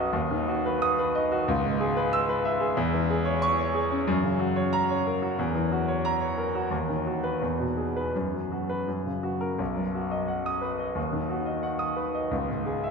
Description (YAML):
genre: classical, virtuoso piano study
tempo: 81-93 BPM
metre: 2/4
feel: rubato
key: B major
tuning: A4 = 442 Hz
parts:
  - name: clear concert grand piano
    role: solo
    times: 0.0-12.9 s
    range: B1 to E6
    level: -25 LUFS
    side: equal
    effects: none
room: wet cathedral reverb, RT60 5.6 s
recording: in a vast, echoing space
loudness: -25 LUFS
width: side -5 dB against mid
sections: 0.0-9.6 A section; 9.6-12.9 A section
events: none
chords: 0.1 B/D#; 1.5 C#m7; 2.8 C#m/E; 4.1 F#; 5.4 F#7/E; 6.7 B/D#; 7.4 E; 8.1 B5/F#; 8.9 F#; 9.6 B; 11.0 B/D#; 12.3 C#m